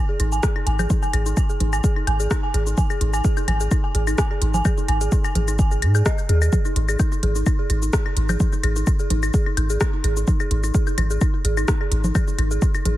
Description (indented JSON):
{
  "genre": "minimal techno",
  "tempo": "128 BPM",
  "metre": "4/4",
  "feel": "swing 54% on 16ths",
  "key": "unclear",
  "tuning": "A4 = 441 Hz",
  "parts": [
    { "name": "dark detuned synth bell", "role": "riff", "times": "0.1-12.9 s", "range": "D#4 to G#5", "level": "-27 LUFS", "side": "right 1 dB", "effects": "chorus, sidechain pumping, tape echo" },
    { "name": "punchy sub bass", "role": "bass", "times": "0.2-13.0 s", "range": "G#1 to G#2", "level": "-20 LUFS", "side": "equal", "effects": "sidechain pumping" },
    { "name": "techno drum kit", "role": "drums", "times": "0.2-13.0 s", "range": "hi-hat, rim click, shaker", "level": "-28 LUFS", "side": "left 1 dB", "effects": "overdrive" },
    { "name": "claves, congas and woodblock", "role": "percussion", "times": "0.2-13.0 s", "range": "none", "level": "-29 LUFS", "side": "left 2 dB", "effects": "overdrive, analog delay" },
    { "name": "electronic kick drum", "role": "drums", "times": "0.4-12.7 s", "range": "none", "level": "-20 LUFS", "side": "equal", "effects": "overdrive" }
  ],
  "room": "little or no reverb",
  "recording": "echo-heavy mix",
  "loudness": "-18 LUFS",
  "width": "side -15 dB against mid",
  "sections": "0.0-13.0 A section",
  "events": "none",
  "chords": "0.0 G#5",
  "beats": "0.43 | 0.90 1.37 1.84 2.31 | 2.78 3.25 3.71 4.18 | 4.65 5.12 5.59 6.06 | 6.53 7.00 7.46 7.93 | 8.40 8.87 9.34 9.81 | 10.28 10.74 11.21 11.68 | 12.15 12.62"
}